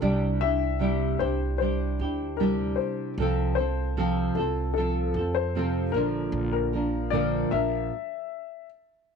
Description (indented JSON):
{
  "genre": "acoustic pop",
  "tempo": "76 BPM",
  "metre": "4/4",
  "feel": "swing 55% on 16ths",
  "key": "F major",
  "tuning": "A4 = 440 Hz",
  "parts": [
    { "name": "nylon-string guitar", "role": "accompaniment", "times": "0.0-7.9 s", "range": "Bb2 to Bb4", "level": "-27 LUFS", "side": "right 2 dB", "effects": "double-tracked left and right" },
    { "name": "upright bass", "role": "bass", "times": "0.0-7.9 s", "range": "Bb1 to F2", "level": "-30 LUFS", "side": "right 1 dB", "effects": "none" },
    { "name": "dark upright piano", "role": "melody", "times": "0.4-8.7 s", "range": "A4 to E5", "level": "-30 LUFS", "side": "left 14 dB", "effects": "none" }
  ],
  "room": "light reverb, small room ambience",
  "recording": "none",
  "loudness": "-24 LUFS",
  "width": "side -6 dB against mid",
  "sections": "0.0-9.2 A section",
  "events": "stop 7.9-9.2",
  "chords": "0.0 Cadd9; 3.2 F/C; 5.9 Bb; 7.9 N.C."
}